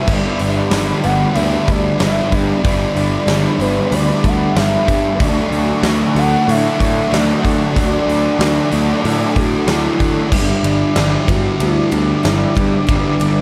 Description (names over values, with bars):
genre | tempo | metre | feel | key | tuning
rock, shoegaze and dream pop | 94 BPM | 4/4 | straight | unclear | A4 = 444 Hz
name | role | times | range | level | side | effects
pure breathy sine lead | melody | 0.0-13.4 s | D4 to F#5 | -23 LUFS | equal | chorus, tape echo
brassy analog pad | sustained chords | 0.0-13.4 s | G4 to D6 | -29 LUFS | equal | chorus
picked twelve-string acoustic guitar | arpeggios | 0.0-13.4 s | E3 to G4 | -30 LUFS | equal | none
crunchy overdriven guitar | riff | 0.0-10.3 s | G2 to D4 | -24 LUFS | equal | reverse reverb
thick fuzz guitar | riff | 0.0-13.4 s | G2 to D4 | -22 LUFS | equal | distortion, subtle chorus
fuzz picked electric bass | bass | 0.1-13.4 s | G1 to D3 | -22 LUFS | equal | overdrive
huge arena drum kit | drums | 0.1-13.3 s | crash cymbal, hi-hat, kick drum, ride cymbal, snare drum | -22 LUFS | equal | none
room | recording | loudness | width
moderate concert hall reverb, RT60 2.0 s | none | -15 LUFS | mono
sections
0.0-10.3 A section; 10.3-13.4 B section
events
none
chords
0.1 G6; 5.2 Dmaj7; 10.3 G6